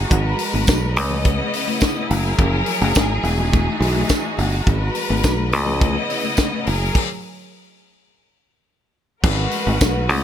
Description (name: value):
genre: disco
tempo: 105 BPM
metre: 4/4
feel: straight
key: G# minor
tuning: A4 = 436 Hz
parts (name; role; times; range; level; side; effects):
- clear symphonic string section; sustained chords; 0.0-10.2 s; C#3 to D#5; -23 LUFS; equal; none
- fingered electric bass; bass; 0.0-10.2 s; E1 to C#2; -20 LUFS; right 1 dB; none
- tight funk drum kit; drums; 0.1-10.2 s; crash cymbal, hi-hat, kick drum, snare drum; -20 LUFS; equal; none
- congas; percussion; 0.1-10.2 s; none; -28 LUFS; left 7 dB; none
- tambourine; percussion; 0.7-9.9 s; none; -31 LUFS; right 9 dB; none
room: small room reverb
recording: none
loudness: -17 LUFS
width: side -10 dB against mid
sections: 0.0-9.2 A section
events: stop 7.0-9.2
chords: 0.1 G#m9; 1.0 C#m9; 2.1 F#9; 3.2 Emaj9; 4.7 G#m9; 5.5 C#m9; 6.7 F#9; 7.8 N.C.; 9.2 G#m9